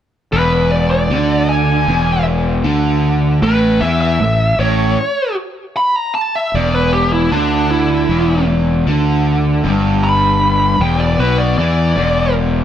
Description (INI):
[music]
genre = rock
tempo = 77 BPM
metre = 4/4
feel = straight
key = unclear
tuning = A4 = 441 Hz
[part]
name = bluesy overdriven lead guitar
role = melody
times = 0.3-12.3 s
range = D4 to B5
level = -17 LUFS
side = equal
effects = distortion, plate reverb, tape echo
[part]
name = overdriven electric guitar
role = riff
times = 0.3-12.6 s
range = E2 to E3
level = -16 LUFS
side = equal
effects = none
[part]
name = fuzz fingered electric bass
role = bass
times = 0.3-12.6 s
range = E1 to E2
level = -17 LUFS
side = equal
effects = overdrive
[sound]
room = light reverb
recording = none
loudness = -12 LUFS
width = side -10 dB against mid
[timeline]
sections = 0.3-12.6 A section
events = none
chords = 0.3 E7; 3.4 A; 6.5 E5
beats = | 0.33 1.11 1.88 2.66 | 3.44 4.21 4.99 5.76 | 6.54 7.31 8.09 8.87 | 9.64 10.42 11.19 11.96